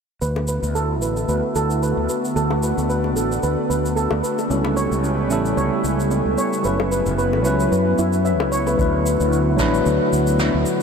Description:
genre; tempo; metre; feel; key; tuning
sunset chillout; 112 BPM; 4/4; swing 55% on 16ths; D major; A4 = 441 Hz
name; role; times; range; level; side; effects
airy breathy pad; sustained chords; 0.2-10.8 s; C#3 to G4; -23 LUFS; equal; chorus
steel pan; arpeggios; 0.2-8.8 s; C#4 to E5; -24 LUFS; right 2 dB; low-pass filter, diffuse ambient delay
fretless electric bass; bass; 0.2-10.6 s; F#1 to F#2; -23 LUFS; equal; none
shaker and snare drum; drums; 0.2-10.8 s; none; -30 LUFS; equal; none
bongos; percussion; 0.4-8.8 s; none; -32 LUFS; left 5 dB; none
tine electric piano; accompaniment; 4.5-10.8 s; F#3 to B4; -22 LUFS; left 2 dB; auto-pan, diffuse ambient delay
electronic kick drum; drums; 8.8-9.7 s; none; -25 LUFS; equal; none
room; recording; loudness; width
wet huge ambient reverb, RT60 8.0 s; dreamy mix soaked in reverb; -17 LUFS; side -6 dB against mid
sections
0.2-8.8 A section; 8.8-10.8 B section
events
filter sweep on steel pan 0.2-8.8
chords
0.2 D69; 4.5 A7; 6.6 F#7sus4; 8.8 D69

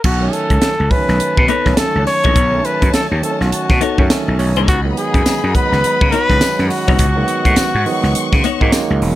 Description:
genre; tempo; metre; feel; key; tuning
funk; 104 BPM; 4/4; swing 60% on 16ths; unclear; A4 = 441 Hz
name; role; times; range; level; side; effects
dark trumpet; melody; 0.0-8.7 s; F#4 to C#5; -18 LUFS; left 1 dB; none
warm studio string section; sustained chords; 0.0-9.2 s; C#5 to C#6; -26 LUFS; left 4 dB; none
gritty slap bass; bass; 0.0-9.2 s; E1 to C#3; -17 LUFS; equal; overdrive
crisp fusion drum kit; drums; 0.0-9.2 s; crash cymbal, hi-hat, kick drum, snare drum; -17 LUFS; equal; none
barky tine electric piano; stabs; 0.2-9.2 s; C#3 to C#5; -22 LUFS; right 5 dB; none
semi-hollow electric guitar; accompaniment; 1.5-8.7 s; B3 to C#5; -19 LUFS; left 8 dB; wide subtle chorus
tambourine; percussion; 5.3-8.9 s; none; -29 LUFS; left 7 dB; none
room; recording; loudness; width
light reverb; none; -12 LUFS; side -14 dB against mid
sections
0.0-9.2 A section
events
tine electric piano fill 3.8-4.7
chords
0.0 B9; 4.7 C#9sus4

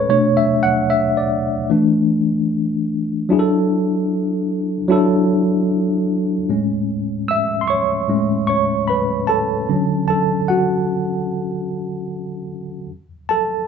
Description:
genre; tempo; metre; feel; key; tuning
soul; 75 BPM; 4/4; swing 54% on 16ths; A major; A4 = 440 Hz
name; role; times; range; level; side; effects
tine electric piano; solo; 0.0-13.7 s; A2 to E6; -16 LUFS; equal; overdrive, fast stereo tremolo
room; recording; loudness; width
moderate studio reverb, RT60 0.6 s; band playing live in one room, nothing above 8.0 kHz; -16 LUFS; side -7 dB against mid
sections
0.0-3.3 A section; 3.3-6.5 B section; 6.5-13.7 C section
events
tine electric piano solo 0.0-3.3, 6.5-13.7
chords
0.1 Bm7; 1.7 E7sus4; 3.3 E9sus4; 6.5 Amaj7; 9.7 Dmaj7; 12.9 N.C.

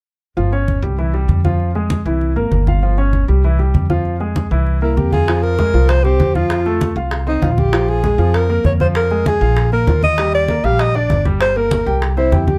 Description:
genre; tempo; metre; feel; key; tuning
Afro-Cuban jazz; 196 BPM; 4/4; straight; F minor from 5.3 s; A4 = 439 Hz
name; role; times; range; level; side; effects
warm baby grand piano; accompaniment; 0.4-12.6 s; E3 to G5; -23 LUFS; equal; none
upright bass; bass; 0.4-12.6 s; G1 to F2; -19 LUFS; equal; none
congas; percussion; 0.4-12.6 s; none; -23 LUFS; equal; none
breathy alto saxophone; melody; 4.8-12.6 s; Eb4 to F5; -20 LUFS; equal; none
bongos; percussion; 5.3-12.5 s; none; -29 LUFS; equal; none
room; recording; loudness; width
light reverb; none; -16 LUFS; mono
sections
0.4-5.3 A section; 5.3-12.6 B section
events
none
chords
0.4 Dbmaj7#11/G; 1.0 C; 1.6 Fm; 2.2 C7; 2.8 Dbmaj7#11/G; 3.4 C; 4.1 Fm; 4.7 C7; 5.3 Fmadd9; 6.5 F; 7.7 Bb5; 10.2 Ebmaj7; 11.4 Gmadd11; 12.0 C

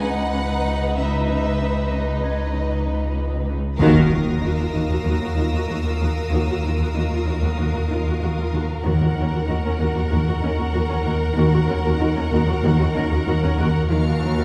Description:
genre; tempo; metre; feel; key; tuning
cinematic, suspense film score; 95 BPM; 4/4; straight; Eb minor from 3.8 s; A4 = 440 Hz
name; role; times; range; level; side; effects
rich symphonic violin section; melody; 0.0-14.4 s; D#5 to F#5; -36 LUFS; equal; none
warm symphonic violin section; second line; 0.0-14.4 s; D#4 to B4; -30 LUFS; equal; none
clear symphonic cello section; riff; 0.0-14.4 s; C#3 to Eb4; -28 LUFS; equal; none
rich symphonic cello section; bass; 0.0-14.4 s; C#2 to Eb2; -28 LUFS; equal; none
punchy sub bass; drone; 0.0-14.4 s; C#2 to Eb2; -27 LUFS; equal; none
concert harp; texture; 0.0-8.3, 13.0-14.4 s; B5 to B6; -41 LUFS; equal; none
warm symphonic viola section; accompaniment; 3.8-14.4 s; Db4 to Gb4; -31 LUFS; equal; none
rich studio double bass section; bass; 3.8-14.4 s; Eb2; -28 LUFS; equal; none
timpani; percussion; 3.8-4.7 s; none; barely audible; none; none
impact; sound effects; 3.8-6.3 s; none; -34 LUFS; equal; none
bright symphonic violin section; texture; 3.8-8.5, 13.9-14.4 s; Eb6 to Db7; -38 LUFS; equal; none
room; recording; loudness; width
wet recital hall reverb, RT60 1.5 s; recorded in a church or concert hall; -21 LUFS; mono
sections
0.0-3.8 A section; 3.8-14.4 B section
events
band accent 3.8-4.4; impact 3.8-6.3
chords
0.0 Badd9/C#; 3.8 Ebmadd9; 8.9 Gb/Eb; 13.9 Ebmadd9

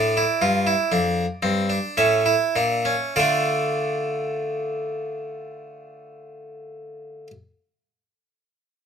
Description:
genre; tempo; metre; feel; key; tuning
classical, baroque-style 3-part fugue for harpsichord; 48-63 BPM; 3/4; straight; D minor; A4 = 440 Hz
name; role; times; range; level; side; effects
harpsichord; solo; 0.0-7.3 s; F2 to E5; -21 LUFS; right 1 dB; none
room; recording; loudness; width
wet studio ambience, RT60 0.5 s; close, detailed microphones; -20 LUFS; side -7 dB against mid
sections
0.0-3.2 A section; 3.2-6.9 B section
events
slowing down 0.0-3.2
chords
0.0 Dm; 2.0 A; 3.2 Dm

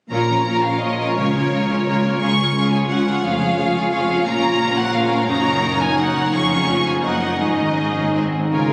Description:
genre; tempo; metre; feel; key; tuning
classical, dramatic, fast romantic movement for symphony orchestra; 173 BPM; 3/4; rubato; Bb minor; A4 = 440 Hz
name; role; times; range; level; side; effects
rich symphonic violin section; melody; 0.1-8.7 s; Db5 to Db6; -24 LUFS; equal; none
clear symphonic violin section; second line; 0.1-8.7 s; F4 to Eb5; -27 LUFS; equal; none
rich symphonic viola section; accompaniment; 0.1-8.7 s; Bb3 to Bb4; -25 LUFS; equal; none
concert harp; arpeggios; 0.1-8.7 s; F2 to F5; -28 LUFS; equal; none
rich studio cello section; bass; 0.1-8.7 s; F2 to Db3; -28 LUFS; equal; none
rich symphonic double bass section; bass; 0.1-8.7 s; F1 to Db2; -27 LUFS; equal; none
warm French horn section; sustained chords; 8.7 s; Ab3; -27 LUFS; equal; none
room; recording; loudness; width
wet cathedral reverb, RT60 4.8 s; recorded on a phone in the room, club ambience, compression; -19 LUFS; mono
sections
0.1-8.5 A section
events
none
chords
0.1 Bbm; 1.2 Bbm/Db; 2.2 Db; 3.2 Db/F; 4.3 Bbm; 5.3 Gb6; 6.3 Db/F; 7.0 Ebm/Gb; 7.4 Absus4; 8.1 Ab

